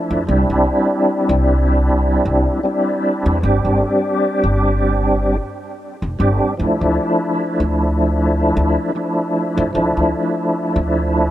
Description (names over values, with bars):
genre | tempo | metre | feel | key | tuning
trip hop | 76 BPM | 4/4 | swing 55% on 16ths | D minor | A4 = 439 Hz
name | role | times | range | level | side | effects
bright tonewheel organ | accompaniment | 0.0-11.3 s | F3 to G4 | -16 LUFS | equal | chorus vibrato, slow rotary speaker, tremolo, vintage 12-bit sampler grit, tape echo
upright bass | bass | 0.1-11.3 s | F1 to F2 | -18 LUFS | equal | tube saturation
room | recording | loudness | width
light reverb, small room ambience | none | -15 LUFS | side -13 dB against mid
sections
0.0-11.3 A section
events
none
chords
0.3 Cadd9; 3.4 Gsus4; 6.6 Dmadd9